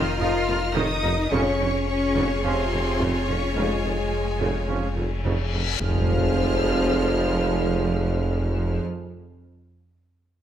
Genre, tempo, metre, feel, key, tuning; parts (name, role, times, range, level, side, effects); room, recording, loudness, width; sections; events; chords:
cinematic, hybrid orchestral and electronic film score; 107 BPM; 4/4; straight; F minor; A4 = 442 Hz
warm symphonic violin section; melody; 0.0-8.8 s; Ab5 to F6; -33 LUFS; left 1 dB
rich symphonic violin section; second line; 0.0-8.8 s; Ab4 to Eb5; -31 LUFS; left 3 dB
clear symphonic viola section; accompaniment; 0.0-8.8 s; Db3 to F4; -33 LUFS; right 1 dB
mellow French horn section; sustained chords; 0.0-8.8 s; C3 to F4; -30 LUFS; left 5 dB
rich studio cello section; bass; 0.0-8.8 s; F3 to F4; -31 LUFS; right 1 dB
sub bass with octave; bass; 0.0-8.8 s; F1; -29 LUFS; equal
bright trombone section; sustained chords; 0.2-8.8 s; F3 to Eb4; -31 LUFS; right 4 dB
clear symphonic double bass section; bass; 0.2-8.8 s; F2; -29 LUFS; right 2 dB
warm tuba; bass; 0.2-8.8 s; F1; -29 LUFS; right 3 dB
reverse cymbal and impact; sound effects; 5.0-9.5 s; -31 LUFS; left 2 dB
moderate recital hall reverb, RT60 1.3 s; -21 LUFS; side -10 dB against mid
0.0-5.8 A section; 5.8-8.0 B section
reverse cymbal 5.0-5.8; impact 5.8-8.0
0.0 Ebsus2/F; 1.3 Db/F; 5.8 Fm